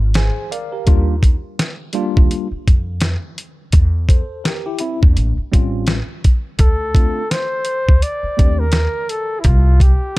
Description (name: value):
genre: hip hop, jazz-hop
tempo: 84 BPM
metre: 4/4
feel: swing 58% on 16ths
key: unclear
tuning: A4 = 440 Hz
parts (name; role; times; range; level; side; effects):
- upright bass; bass; 0.0-9.9 s; Ab1 to F2; -16 LUFS; equal; none
- dusty soul sampler-style drum kit; drums; 0.1-10.2 s; hi-hat, kick drum, snare drum; -14 LUFS; equal; none
- tine electric piano; accompaniment; 0.2-8.6 s; G3 to Ab5; -24 LUFS; equal; medium stereo tremolo
- breathy flugelhorn; melody; 6.6-10.2 s; E4 to D5; -22 LUFS; equal; analog delay
room: little or no reverb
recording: none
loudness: -14 LUFS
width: side -20 dB against mid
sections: 0.0-10.2 A section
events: tine electric piano fill 0.0-0.9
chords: 0.0 Bb7; 0.9 Ebmaj9; 3.7 C13/E; 5.2 A7alt; 6.6 D7(no3); 9.4 C5